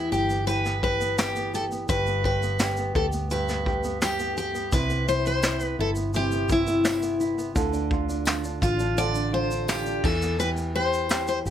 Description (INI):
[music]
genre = acoustic pop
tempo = 85 BPM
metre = 4/4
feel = straight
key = unclear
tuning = A4 = 439 Hz
[part]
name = picked steel-string acoustic guitar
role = melody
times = 0.0-11.4 s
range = E4 to D5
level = -26 LUFS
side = left 2 dB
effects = none
[part]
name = nylon-string guitar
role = accompaniment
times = 0.0-11.5 s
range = G2 to G4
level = -29 LUFS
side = right 2 dB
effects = none
[part]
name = vintage muted fingered electric bass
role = bass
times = 0.0-11.5 s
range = G1 to E2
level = -30 LUFS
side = equal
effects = none
[part]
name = vintage brush drum kit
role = drums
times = 0.1-11.5 s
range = crash cymbal, kick drum, shaker, snare drum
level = -29 LUFS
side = equal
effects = none
[part]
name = tambourine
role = percussion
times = 1.2-11.3 s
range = none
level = -40 LUFS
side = left 7 dB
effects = none
[sound]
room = little or no reverb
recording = none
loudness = -23 LUFS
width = side -10 dB against mid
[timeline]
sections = 0.0-11.5 A section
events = none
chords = 0.0 G6; 1.9 G; 4.7 Cmaj7; 7.6 Dm; 10.0 G69